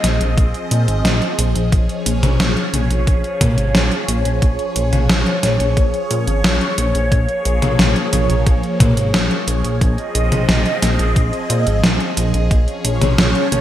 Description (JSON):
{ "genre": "synthwave", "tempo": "89 BPM", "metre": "4/4", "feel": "straight", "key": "Bb minor", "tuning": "A4 = 441 Hz", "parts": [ { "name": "phased analog pad", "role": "sustained chords", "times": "0.0-13.6 s", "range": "F3 to Eb5", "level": "-20 LUFS", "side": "equal", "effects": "phaser, chorus, sidechain pumping" }, { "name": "chorused synth bass", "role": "bass", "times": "0.0-13.6 s", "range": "Ab1 to Bb2", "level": "-18 LUFS", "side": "equal", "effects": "none" }, { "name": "gated 80s digital drum machine", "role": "drums", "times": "0.0-13.6 s", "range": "hi-hat, snare drum, toms", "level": "-18 LUFS", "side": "equal", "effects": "gated reverb, gated reverb snare, overdrive" }, { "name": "electronic kick drum", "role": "drums", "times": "0.4-12.6 s", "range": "none", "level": "-16 LUFS", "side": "equal", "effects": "overdrive" } ], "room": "moderate lush hall reverb, RT60 2.0 s", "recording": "bright 1980s-style digital production", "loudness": "-14 LUFS", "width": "side -12 dB against mid", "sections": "0.0-13.6 A section", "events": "none", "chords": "0.0 Fm7/Bb; 1.7 Bbm7; 9.8 Fm7/Bb; 12.5 Db/Bb" }